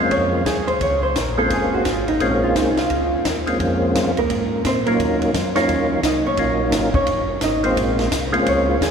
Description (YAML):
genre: soul jazz organ trio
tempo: 172 BPM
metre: 4/4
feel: swing 63% on 8ths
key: Bb minor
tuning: A4 = 440 Hz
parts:
  - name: percussive tonewheel organ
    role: melody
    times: 0.0-8.8 s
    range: Gb3 to F4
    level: -21 LUFS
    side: equal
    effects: slow rotary speaker, chorus vibrato
  - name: vintage hollow-body jazz guitar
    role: accompaniment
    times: 0.0-8.9 s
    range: Bb3 to Eb5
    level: -21 LUFS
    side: right 2 dB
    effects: none
  - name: mellow tonewheel organ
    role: bass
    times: 0.0-8.9 s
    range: Gb1 to Bb2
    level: -26 LUFS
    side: equal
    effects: slow rotary speaker
  - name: compact cocktail drum kit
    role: drums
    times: 0.1-8.9 s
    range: hi-hat, kick drum, ride cymbal, snare drum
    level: -26 LUFS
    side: left 1 dB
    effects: none
room: wet cathedral reverb, RT60 6.3 s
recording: recorded in a church or concert hall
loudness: -17 LUFS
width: side -6 dB against mid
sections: 0.0-8.9 A section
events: hollow-body jazz guitar solo 0.0-8.9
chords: 0.0 Bbm9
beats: 0.11 0.46 | 0.81 1.15 1.50 1.85 | 2.20 2.55 2.89 3.24 | 3.59 3.94 4.29 4.63 | 4.98 5.33 5.68 6.03 | 6.37 6.72 7.07 7.42 | 7.76 8.11 8.46 8.80